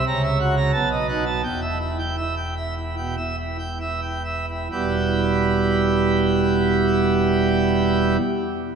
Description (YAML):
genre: classical, organ toccata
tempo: 64-93 BPM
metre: 4/4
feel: straight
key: E minor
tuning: A4 = 439 Hz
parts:
  - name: pipe organ, plenum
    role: solo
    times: 0.0-8.2 s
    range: E1 to A#5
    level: -19 LUFS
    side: right 2 dB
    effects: none
room: wet church reverb, RT60 3.6 s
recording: small room ambience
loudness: -19 LUFS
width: side -6 dB against mid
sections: 0.0-4.7 A section; 4.7-8.4 B section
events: slowing down 0.0-4.7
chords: 0.1 F#7/C#; 0.7 B7; 1.4 Em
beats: 0.07 0.74 | 1.44 2.19 2.97 3.81 | 4.72 5.65 6.58 7.50